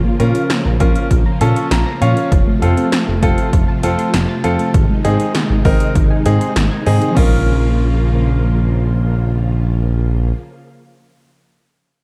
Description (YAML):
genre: synth-pop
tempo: 99 BPM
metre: 4/4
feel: straight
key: Bb minor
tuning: A4 = 439 Hz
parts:
  - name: string machine, violas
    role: sustained chords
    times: 0.0-10.3 s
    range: C3 to F4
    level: -24 LUFS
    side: equal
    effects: ensemble chorus
  - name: soft round pluck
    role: arpeggios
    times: 0.0-10.4 s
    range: Eb3 to Bb6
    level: -26 LUFS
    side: equal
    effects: chorus, digital delay
  - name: clear grand piano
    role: accompaniment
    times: 0.2-10.3 s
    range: C4 to Bb5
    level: -23 LUFS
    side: equal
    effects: none
  - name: smooth gliding synth bass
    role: bass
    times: 0.2-10.3 s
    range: F1 to Bb2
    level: -18 LUFS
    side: equal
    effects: none
  - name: 80s electronic pad drums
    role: drums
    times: 0.2-7.3 s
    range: crash cymbal, hi-hat, kick drum, snare drum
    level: -19 LUFS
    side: equal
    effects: none
room: light reverb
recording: dark, warm production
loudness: -15 LUFS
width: mono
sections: 0.0-7.2 A section; 7.2-9.6 B section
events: grand piano fill 1.1-2.3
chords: 0.0 Bbm; 2.3 F; 4.7 Ab; 7.2 Bbm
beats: 0.50 1.11 1.71 | 2.32 2.92 3.53 4.14 | 4.74 5.35 5.96 6.56 | 7.17 7.77 8.38 8.98